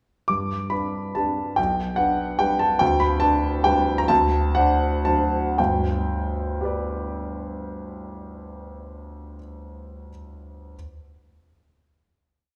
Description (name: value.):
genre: classical, piano waltz.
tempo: 112-151 BPM.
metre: 3/4.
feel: rubato.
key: G major.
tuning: A4 = 440 Hz.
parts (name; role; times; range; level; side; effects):
clear grand piano; solo; 0.3-10.8 s; G1 to D6; -24 LUFS; equal; none.
room: wet recital hall reverb, RT60 1.8 s.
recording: recorded in a church or concert hall.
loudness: -22 LUFS.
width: mono.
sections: 0.3-5.6 A section; 5.6-8.6 final chord.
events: slowing down 2.2-5.6.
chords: 0.3 G; 1.6 G/B; 2.8 G/D; 4.1 D7; 5.6 G.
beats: | 0.29 0.72 1.16 | 1.58 1.98 2.40 | 2.81 3.22 3.65 | 4.09 4.55 5.05 | 5.58 6.09 6.60 | 7.10 7.59 8.11.